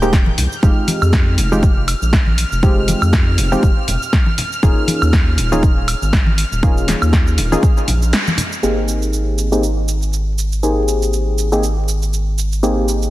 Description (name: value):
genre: deep house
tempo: 120 BPM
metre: 4/4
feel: swing 56% on 16ths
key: Ab major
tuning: A4 = 440 Hz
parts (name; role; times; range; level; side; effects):
- warm analog keys; stabs; 0.0-13.1 s; Ab3 to Ab4; -20 LUFS; equal; chorus, sidechain pumping, low-pass filter, tape echo
- round analog bass; bass; 0.0-13.1 s; Eb1 to F2; -18 LUFS; equal; sidechain pumping
- punchy analog drum machine; drums; 0.0-13.1 s; hi-hat, shaker, snare drum, woodblock; -21 LUFS; right 1 dB; none
- warm chamber violin section; texture; 0.0-8.6 s; F6 to G6; -27 LUFS; right 1 dB; sidechain pumping
- electronic kick drum; drums; 0.1-7.7 s; none; -13 LUFS; equal; overdrive
- congas; percussion; 0.3-8.5 s; none; -24 LUFS; left 2 dB; none
room: light reverb, digital ambience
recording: dense, heavily limited modern master, vinyl crackle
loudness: -13 LUFS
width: side -16 dB against mid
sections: 0.0-8.6 A section; 8.6-13.1 B section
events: break 8.1-8.6; band accent 8.1; filter sweep on synth keys 8.6-13.1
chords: 0.0 Abmaj9; 0.6 Fm9; 4.6 Eb9sus4; 8.6 Abmaj9